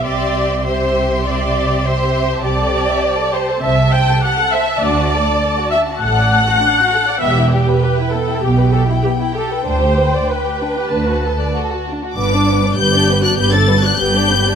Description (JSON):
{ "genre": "quick classical-period movement for string orchestra", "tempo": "100 BPM", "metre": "4/4", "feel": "rubato", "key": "G major", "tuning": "A4 = 439 Hz", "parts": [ { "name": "warm symphonic violin section", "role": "melody", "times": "0.0-14.6 s", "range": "G5 to A6", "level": "-22 LUFS", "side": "left 4 dB", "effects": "none" }, { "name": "warm symphonic violin section", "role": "second line", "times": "0.0-14.6 s", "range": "B3 to E5", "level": "-21 LUFS", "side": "left 1 dB", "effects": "none" }, { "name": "warm symphonic viola section", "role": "accompaniment", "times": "0.0-14.6 s", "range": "D4 to G5", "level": "-17 LUFS", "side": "equal", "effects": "none" }, { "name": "dark chamber double bass section", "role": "bass", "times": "0.0-14.5 s", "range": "E1 to D2", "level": "-19 LUFS", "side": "right 2 dB", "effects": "none" }, { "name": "rich studio cello section", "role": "bass", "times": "0.0-14.5 s", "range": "D2 to C3", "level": "-22 LUFS", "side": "right 2 dB", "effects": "none" } ], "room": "moderate scoring stage reverb, RT60 1.9 s", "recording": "none", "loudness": "-13 LUFS", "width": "side -7 dB against mid", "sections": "0.0-12.2 A section; 12.2-14.6 B section", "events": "none", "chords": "0.1 C; 2.4 Am7/C; 4.8 D; 7.2 Em; 9.7 G/D; 10.9 D; 12.2 G", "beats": "| 0.05 0.65 1.25 1.84 | 2.44 3.03 3.62 4.22 | 4.82 5.42 6.02 6.62 | 7.22 7.83 8.43 9.04 | 9.66 10.29 10.92 11.54 | 12.16 12.77 13.38 13.98" }